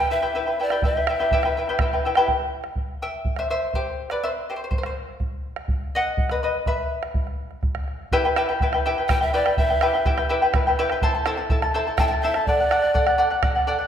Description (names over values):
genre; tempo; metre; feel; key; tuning
andean folk, Andean ensemble; 82 BPM (dotted quarters); 6/8; straight; E minor from 8.1 s; A4 = 440 Hz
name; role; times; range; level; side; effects
breathy reedy pan flute; melody; 0.0-2.1, 9.1-13.2 s; D5 to G5; -24 LUFS; equal; none
charango; accompaniment; 0.0-13.9 s; E4 to A5; -22 LUFS; left 1 dB; none
bombo; percussion; 0.7-13.5 s; none; -25 LUFS; right 1 dB; none
room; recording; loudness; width
wet recital hall reverb, RT60 1.5 s; none; -20 LUFS; side -9 dB against mid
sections
0.0-2.3 A section; 2.3-8.1 B section; 8.1-13.9 C section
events
charango solo 2.3-8.1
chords
0.0 Em; 2.3 C; 5.2 B; 6.7 N.C.; 8.1 Em; 11.0 Am; 12.5 D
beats
0.09 | 0.82 1.55 | 2.28 3.01 | 3.74 4.47 | 5.21 5.94 | 6.67 7.39 | 8.12 8.85 | 9.57 10.30 | 11.02 11.75 | 12.47 13.19